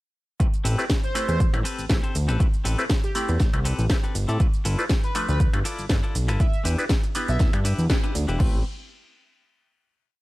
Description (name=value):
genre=filtered disco house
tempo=120 BPM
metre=4/4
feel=swing 54% on 16ths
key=A minor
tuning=A4 = 440 Hz
part: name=clav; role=accompaniment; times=0.4-8.6 s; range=F3 to B5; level=-30 LUFS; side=equal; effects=phaser, sidechain pumping
part: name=electronic kick drum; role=drums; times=0.4-8.5 s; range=none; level=-22 LUFS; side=equal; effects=none
part: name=house drum kit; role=drums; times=0.4-8.5 s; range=crash cymbal, finger snaps, hi-hat, ride cymbal, shaker, snare drum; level=-30 LUFS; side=equal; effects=sidechain pumping on hats, sidechain pumping on perc, sidechain pumping on cymbals
part: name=clean electric guitar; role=riff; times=0.6-8.6 s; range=C4 to D5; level=-33 LUFS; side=left 3 dB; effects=sidechain pumping
part: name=fat analog bass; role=bass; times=0.6-8.6 s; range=E1 to A2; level=-24 LUFS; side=equal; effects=sidechain pumping
part: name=analog synth brass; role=melody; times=1.0-7.5 s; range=G4 to E5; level=-33 LUFS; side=right 2 dB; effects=chorus, sidechain pumping, digital delay
room=little or no reverb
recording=none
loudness=-20 LUFS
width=side -18 dB against mid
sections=0.4-8.4 drop; 8.4-10.2 final chord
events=drop 0.4-8.4; band accent 7.9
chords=0.4 Am9; 4.4 G13; 6.4 Em7; 8.4 Am9